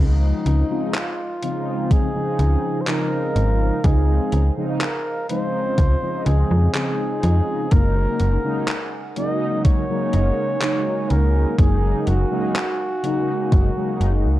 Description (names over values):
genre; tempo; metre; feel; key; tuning
vaporwave; 62 BPM; 4/4; straight; Db major; A4 = 440 Hz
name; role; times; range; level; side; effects
mellow flugelhorn; melody; 0.0-14.4 s; Eb4 to Eb5; -26 LUFS; equal; vintage 12-bit sampler grit, tape echo
mellow synth brass; accompaniment; 0.0-14.4 s; Db3 to Eb4; -24 LUFS; equal; lush chorus, analog delay
warbly tape-like pad; sustained chords; 0.0-14.4 s; Eb4 to Ab5; -34 LUFS; right 1 dB; chorus, built-in reverb, vintage 12-bit sampler grit
slap-like FM bass; bass; 0.0-14.4 s; Gb1 to F2; -17 LUFS; equal; none
gated 80s digital drum machine; drums; 0.5-14.2 s; handclaps, hi-hat; -28 LUFS; equal; gated reverb, overdrive
electronic kick drum; drums; 1.9-13.7 s; none; -17 LUFS; equal; overdrive
room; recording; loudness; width
light reverb; dark, warm production, cassette tape; -18 LUFS; side -15 dB against mid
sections
0.0-14.4 A section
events
none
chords
0.0 Dbmaj9; 7.7 Gb69